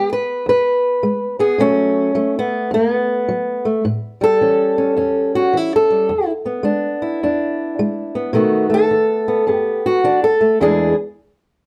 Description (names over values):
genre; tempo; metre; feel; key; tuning
acoustic country blues, solo or duo; 106 BPM; 4/4; swing 64% on 8ths; E mixolydian; A4 = 440 Hz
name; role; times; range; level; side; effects
fingerpicked old ladder-braced acoustic guitar; solo; 0.0-10.9 s; E2 to B4; -17 LUFS; equal; none
room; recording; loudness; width
moderate studio reverb, RT60 0.6 s; none; -17 LUFS; mono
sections
0.0-10.6 A section; 10.6-11.7 B section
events
none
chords
0.0 E; 1.6 B5; 3.8 A7; 6.1 E7; 8.4 B7; 10.6 E7